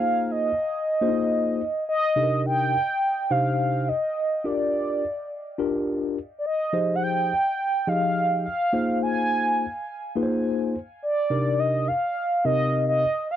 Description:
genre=funk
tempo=105 BPM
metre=4/4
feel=straight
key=unclear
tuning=A4 = 440 Hz
part: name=mellow horn-like synth lead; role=melody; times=0.0-13.4 s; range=D5 to Ab5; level=-24 LUFS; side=right 1 dB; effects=chorus
part: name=mellow tine electric piano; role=accompaniment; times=0.0-13.0 s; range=C3 to Eb5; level=-25 LUFS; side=left 2 dB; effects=slow stereo tremolo
room=light reverb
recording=dry, close 1970s-style studio recording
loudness=-22 LUFS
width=side -11 dB against mid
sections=0.0-13.4 A section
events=none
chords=0.0 Bb9sus4; 2.2 Cm9; 4.4 Gm7; 6.7 Fm7; 8.7 Bb9sus4; 11.3 Cm9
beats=0.45 1.02 1.59 | 2.16 2.73 3.31 3.88 | 4.45 5.02 5.59 6.16 | 6.73 7.30 7.88 8.45 | 9.02 9.59 10.16 10.73 | 11.30 11.88 12.45 13.02

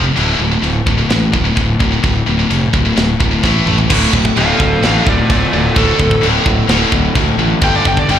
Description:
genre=heavy metal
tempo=129 BPM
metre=4/4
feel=straight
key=D minor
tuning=A4 = 442 Hz
part: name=heavy high-gain guitar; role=riff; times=0.0-8.2 s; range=D2 to A3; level=-17 LUFS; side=left 8 dB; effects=distortion, slapback echo
part: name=heavy high-gain guitar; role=riff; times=0.0-8.2 s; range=D2 to A3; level=-20 LUFS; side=right 13 dB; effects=distortion
part: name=fuzz fingered electric bass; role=bass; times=0.0-8.2 s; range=D1 to D2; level=-16 LUFS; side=right 1 dB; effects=overdrive
part: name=tight metal drum kit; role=drums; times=0.2-8.2 s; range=china cymbal, crash cymbal, kick drum, snare drum, toms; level=-18 LUFS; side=right 1 dB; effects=none
part: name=raw garage guitar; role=riff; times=3.9-8.2 s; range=D2 to G3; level=-19 LUFS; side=right 1 dB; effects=overdrive, slapback echo
part: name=high-gain lead guitar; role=melody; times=4.4-8.2 s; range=F4 to G5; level=-17 LUFS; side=equal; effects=distortion, slapback echo
room=little or no reverb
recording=live gig heard through the venue's PA, club reverb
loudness=-11 LUFS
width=side -9 dB against mid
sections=0.0-3.9 A section; 3.9-8.2 B section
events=drum fill 3.4-3.9; lead electric guitar solo 3.9-8.2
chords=0.2 D5; 3.4 A5; 3.9 Dm; 7.6 G5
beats=| 0.16 0.63 1.10 1.57 | 2.03 2.50 2.97 3.44 | 3.90 4.37 4.83 5.30 | 5.76 6.23 6.69 7.16 | 7.62 8.09

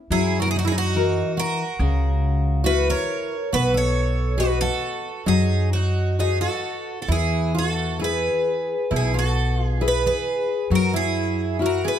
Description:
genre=fado-style ballad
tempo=68 BPM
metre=4/4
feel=uneven beats, rubato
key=E major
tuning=A4 = 440 Hz
part: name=picked twelve-string acoustic guitar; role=melody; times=0.1-12.0 s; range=F#4 to C#5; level=-25 LUFS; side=right 2 dB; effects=none
part: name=picked twelve-string acoustic guitar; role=second line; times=0.1-12.0 s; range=D#4 to A#4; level=-28 LUFS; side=right 3 dB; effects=none
part: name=nylon-string guitar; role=accompaniment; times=0.1-12.0 s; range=B2 to D#5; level=-25 LUFS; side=left 6 dB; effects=none
part: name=upright bass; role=bass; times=0.1-11.9 s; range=B1 to F#2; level=-23 LUFS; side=equal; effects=none
room=light reverb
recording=close, detailed microphones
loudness=-20 LUFS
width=side -9 dB against mid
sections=0.0-12.0 A section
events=none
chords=0.1 F#7; 3.5 B; 7.1 E; 10.7 F#7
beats=| 0.10 0.94 1.79 2.66 | 3.52 4.38 5.26 6.17 | 7.08 8.00 8.91 9.81 | 10.70 11.60

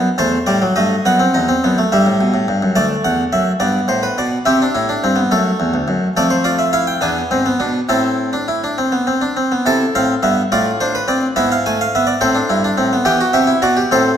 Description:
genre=classical, baroque-style 4-part fugue for harpsichord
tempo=70 BPM (dotted quarters)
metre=6/8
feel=straight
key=A minor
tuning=A4 = 441 Hz
part: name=harpsichord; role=solo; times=0.0-14.2 s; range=D2 to A5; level=-13 LUFS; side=equal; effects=none
room=wet recital hall reverb, RT60 1.5 s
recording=none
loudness=-13 LUFS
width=side -9 dB against mid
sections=0.0-2.8 A section; 2.8-9.7 B section; 9.7-14.2 A section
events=none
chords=0.2 F#m7b5/E; 1.0 B7; 1.9 Em/G; 2.8 D; 3.6 G; 4.5 C; 5.3 Dadd9; 6.2 F; 7.0 E7; 7.9 Am; 10.5 Bm7b5/A; 11.4 E7/G#; 12.2 Am; 13.1 Em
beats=0.19 | 1.04 1.90 | 2.76 3.62 | 4.47 5.32 | 6.17 7.04 | 7.91 8.78 | 9.65 10.51 | 11.37 12.22 | 13.07 13.92

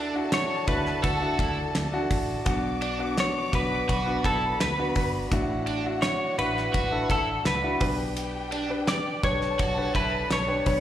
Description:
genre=piano-driven pop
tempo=84 BPM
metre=4/4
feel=straight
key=unclear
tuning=A4 = 440 Hz
part: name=warm symphonic violin section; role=second line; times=0.0-10.8 s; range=D4 to D6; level=-36 LUFS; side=left 2 dB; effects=slapback echo
part: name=clear grand piano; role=accompaniment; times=0.0-10.8 s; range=A2 to C#5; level=-30 LUFS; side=left 1 dB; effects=none
part: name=overdriven electric guitar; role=riff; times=0.0-10.1 s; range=D4 to F#4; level=-32 LUFS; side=right 4 dB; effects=slapback echo
part: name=vintage muted fingered electric bass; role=bass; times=0.0-10.8 s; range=G1 to D2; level=-32 LUFS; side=equal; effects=none
part: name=direct-recorded clean electric guitar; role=melody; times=0.3-10.8 s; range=A4 to D5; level=-28 LUFS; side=equal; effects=analog chorus, slapback echo, tape echo
part: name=damped 70s drum kit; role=drums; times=0.3-10.8 s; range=hi-hat, kick drum, ride cymbal, snare drum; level=-30 LUFS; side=equal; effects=none
room=small room ambience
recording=live gig heard through the venue's PA, club reverb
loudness=-24 LUFS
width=side -11 dB against mid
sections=0.0-10.8 A section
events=none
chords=0.0 Dadd9; 2.5 Bm; 5.3 Dadd9/A; 7.8 G/B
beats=0.32 1.03 1.75 | 2.46 3.17 3.89 4.60 | 5.32 6.03 6.74 7.46 | 8.17 8.88 9.60 10.31

